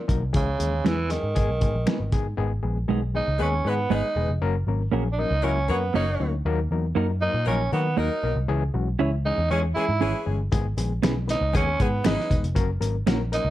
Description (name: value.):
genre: uptempo 1960s-style soul.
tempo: 118 BPM.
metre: 4/4.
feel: straight.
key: G# minor.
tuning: A4 = 440 Hz.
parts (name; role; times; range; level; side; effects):
raspy tenor saxophone; melody; 0.0-13.5 s; C#3 to E4; -26 LUFS; right 3 dB; none.
overdriven reed electric piano; accompaniment; 0.1-13.5 s; D#3 to B4; -30 LUFS; left 6 dB; fast tremolo.
vintage muted picked electric bass; bass; 0.1-13.5 s; E1 to D#3; -26 LUFS; equal; none.
cloth-damped thuddy drum kit; drums; 0.1-2.2, 10.5-13.4 s; hi-hat, kick drum, snare drum; -25 LUFS; equal; none.
clean electric guitar; stabs; 0.8-13.2 s; G#3 to C#5; -26 LUFS; right 7 dB; none.
finger snaps; percussion; 0.9-2.0, 11.0-13.2 s; none; -38 LUFS; left 5 dB; none.
bright saxophone section; second line; 3.4-12.4 s; D#3 to C#5; -33 LUFS; left 3 dB; none.
room: light reverb.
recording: dark, warm production.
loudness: -22 LUFS.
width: side -14 dB against mid.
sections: 0.0-2.4 A section; 2.4-13.5 B section.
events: none.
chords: 0.3 C#m; 1.4 G#m; 4.4 F#; 6.5 D#m; 8.5 C#m; 10.5 G#m; 12.6 F#.